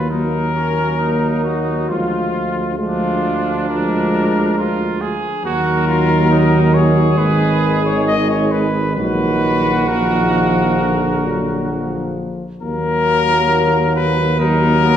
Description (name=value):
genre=classical, brass quintet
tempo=67 BPM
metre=4/4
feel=rubato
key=Eb minor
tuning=A4 = 442 Hz
part: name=warm cornet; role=melody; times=0.0-15.0 s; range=F4 to Eb5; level=-20 LUFS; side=left 3 dB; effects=none
part: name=warm trumpet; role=second line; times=0.0-15.0 s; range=Cb4 to Ab4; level=-22 LUFS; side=right 4 dB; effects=none
part: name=mellow French horn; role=accompaniment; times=0.0-15.0 s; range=F3 to Bb3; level=-21 LUFS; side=left 2 dB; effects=none
part: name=mellow trombone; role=accompaniment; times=0.0-15.0 s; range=D3 to Gb3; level=-21 LUFS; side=right 2 dB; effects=none
part: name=warm tuba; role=bass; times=0.0-15.0 s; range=Ab1 to Eb2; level=-20 LUFS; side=right 2 dB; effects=none
room=wet recital hall reverb, RT60 1.5 s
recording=recorded in a church or concert hall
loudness=-14 LUFS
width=side -9 dB against mid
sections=0.0-15.0 A section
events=none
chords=0.0 Ebm; 1.9 Bb7/D; 5.4 Ebm; 7.2 Ab5; 9.0 Ebm/Bb; 10.8 Bb; 12.6 Ebm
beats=0.11 1.00 | 1.90 2.78 3.69 4.57 | 5.44 6.31 7.18 8.07 | 8.97 9.88 10.80 11.72 | 12.63 13.52 14.40